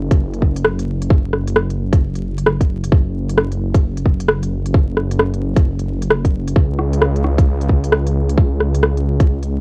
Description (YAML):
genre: future garage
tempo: 132 BPM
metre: 4/4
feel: swing 63% on 16ths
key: unclear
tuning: A4 = 441 Hz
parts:
  - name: swelling detuned saw bass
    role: bass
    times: 0.0-9.6 s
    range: F#1 to C#2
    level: -21 LUFS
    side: equal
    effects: tube saturation, sidechain pumping
  - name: electronic kick drum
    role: drums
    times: 0.1-9.3 s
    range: none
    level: -15 LUFS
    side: equal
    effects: studio reverb, cassette tape
  - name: organic electronic drum kit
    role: drums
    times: 0.1-9.5 s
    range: hi-hat, rim click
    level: -18 LUFS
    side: equal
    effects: overdrive, studio reverb, cassette tape
room: light reverb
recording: home recording on cassette, vinyl crackle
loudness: -17 LUFS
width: mono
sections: 0.0-9.6 A section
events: none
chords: none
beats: 0.20 0.65 | 1.11 1.56 2.02 2.47 | 2.92 3.38 3.83 4.29 | 4.74 5.20 5.65 6.11 | 6.56 7.01 7.47 7.92 | 8.38 8.83 9.29